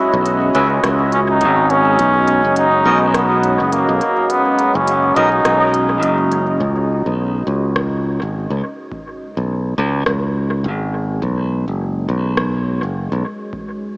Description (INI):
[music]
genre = ambient dub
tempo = 104 BPM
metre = 4/4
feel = swing 58% on 16ths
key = unclear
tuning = A4 = 440 Hz
[part]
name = trombone with straight mute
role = melody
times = 0.0-6.0 s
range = A#3 to E4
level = -16 LUFS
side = equal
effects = dub echo
[part]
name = deep dark ambient pad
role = sustained chords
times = 0.0-14.0 s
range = G#3 to D#5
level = -21 LUFS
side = equal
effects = chorus, built-in reverb
[part]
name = modern bright fingered electric bass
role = bass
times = 0.1-13.2 s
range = F#1 to C#2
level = -18 LUFS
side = equal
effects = none
[part]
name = organic electronic drum kit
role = drums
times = 0.3-12.5 s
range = hi-hat, rim click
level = -26 LUFS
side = equal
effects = overdrive, dub echo
[part]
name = melodica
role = stabs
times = 0.5-5.3 s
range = B3 to E5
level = -24 LUFS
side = equal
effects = none
[part]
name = electronic kick drum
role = drums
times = 0.8-13.7 s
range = none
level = -35 LUFS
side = equal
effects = none
[sound]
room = wet cathedral reverb, RT60 5.6 s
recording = dreamy mix soaked in reverb, small speaker sound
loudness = -14 LUFS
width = side -26 dB against mid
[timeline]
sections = 0.0-6.6 A section; 6.6-14.0 B section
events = kick drops out 4.3-6.6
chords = 0.0 C#m7; 2.0 B; 6.6 C#5; 11.2 B